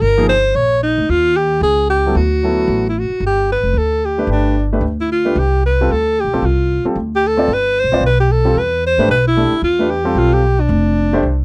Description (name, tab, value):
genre	jazz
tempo	225 BPM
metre	4/4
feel	swing 60% on 8ths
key	G mixolydian from 3.2 s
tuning	A4 = 442 Hz
part	clear alto saxophone	melody	0.0-11.4 s	D4 to Db5	-18 LUFS	equal	none
part	upright bass	bass	0.0-11.4 s	F1 to Ab2	-20 LUFS	equal	none
part	warm concert grand piano	accompaniment	0.2-11.2 s	F3 to D5	-21 LUFS	equal	none
room	little or no reverb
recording	dry, close 1970s-style studio recording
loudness	-15 LUFS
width	mono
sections	0.0-3.2 A section; 3.2-11.4 B section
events	none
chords	0.0 Eb7; 1.1 Db/Eb; 2.2 D; 3.2 Gsus4; 7.5 Em/G; 10.7 F5